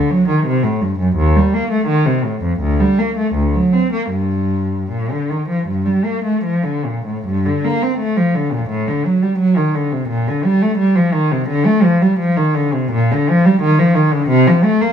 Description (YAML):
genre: classical, baroque-style suite movement for unaccompanied cello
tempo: 72-90 BPM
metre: 4/4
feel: rubato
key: G minor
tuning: A4 = 435 Hz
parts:
  - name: dark cello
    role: solo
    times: 0.0-14.9 s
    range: D2 to C4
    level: -14 LUFS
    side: equal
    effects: none
room: moderate stone room reverb, RT60 1.2 s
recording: heard from further back in the room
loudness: -14 LUFS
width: side -8 dB against mid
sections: 0.0-7.3 A section; 7.3-14.9 B section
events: none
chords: none